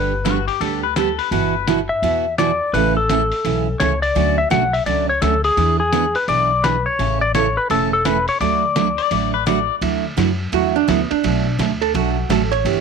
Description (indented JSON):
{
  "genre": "country, western swing",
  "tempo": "169 BPM",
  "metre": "4/4",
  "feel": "swing 63% on 8ths",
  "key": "D major",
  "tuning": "A4 = 440 Hz",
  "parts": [
    { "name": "clean lap steel guitar", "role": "melody", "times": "0.0-9.4 s", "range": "G#4 to F#5", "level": "-18 LUFS", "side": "left 3 dB", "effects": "none" },
    { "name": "picked steel-string acoustic guitar", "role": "accompaniment", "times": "0.0-12.8 s", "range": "B2 to A4", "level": "-21 LUFS", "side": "right 14 dB", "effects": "none" },
    { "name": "upright bass", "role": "bass", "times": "0.0-12.8 s", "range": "E1 to F#2", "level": "-24 LUFS", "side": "left 3 dB", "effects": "none" },
    { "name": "pedal steel guitar", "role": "second line", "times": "0.2-1.8, 9.0-9.7 s", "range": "F#4 to D5", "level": "-22 LUFS", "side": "left 15 dB", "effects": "none" },
    { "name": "lo-fi sampler-style drum kit", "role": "drums", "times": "0.3-12.8 s", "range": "hi-hat, ride cymbal, snare drum", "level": "-27 LUFS", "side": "left 3 dB", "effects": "none" },
    { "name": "archtop guitar, miked and amplified", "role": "second line", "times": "10.5-12.8 s", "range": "B3 to C#5", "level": "-20 LUFS", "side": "right 14 dB", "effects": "none" }
  ],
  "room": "light reverb",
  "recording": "1960s-style stereo with parts hard left and right",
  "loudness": "-16 LUFS",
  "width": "side -6 dB against mid",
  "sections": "0.0-9.8 A section; 9.8-12.8 B section",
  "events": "hollow-body jazz guitar solo 9.8-12.8",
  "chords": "0.0 G; 1.3 Emadd9/G; 2.7 A; 4.2 Dmaj7; 5.6 E7; 7.0 A; 8.4 D; 9.8 Dadd9; 11.2 Bm7",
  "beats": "0.25 0.61 0.96 | 1.32 1.67 2.03 2.38 | 2.73 3.09 3.44 3.80 | 4.15 4.51 4.86 5.22 | 5.57 5.93 6.28 6.63 | 6.99 7.34 7.70 8.05 | 8.41 8.76 9.11 9.47 | 9.82 10.18 10.53 10.88 | 11.24 11.59 11.94 12.30 | 12.65"
}